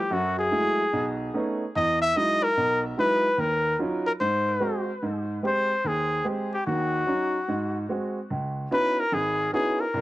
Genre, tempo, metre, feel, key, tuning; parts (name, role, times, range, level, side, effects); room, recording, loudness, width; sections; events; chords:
jazz; 146 BPM; 4/4; swing 66% on 8ths; A4 = 440 Hz
breathy trumpet; melody; 0.0-10.0 s; Gb4 to E5; -24 LUFS; left 1 dB; cassette tape, tape echo
warm baby grand piano; accompaniment; 0.1-10.0 s; Ab1 to G4; -28 LUFS; right 1 dB
wet booth ambience, RT60 0.3 s; home recording on cassette; -23 LUFS; side -16 dB against mid
0.0-5.0 A section; 5.0-10.0 B section
0.1 Gbm9; 0.9 Cb9; 1.7 Emaj9; 3.4 Ebm9; 4.2 Ab7; 5.0 Abmaj7; 6.7 Ebm7; 7.5 Ab7; 8.3 Dbm11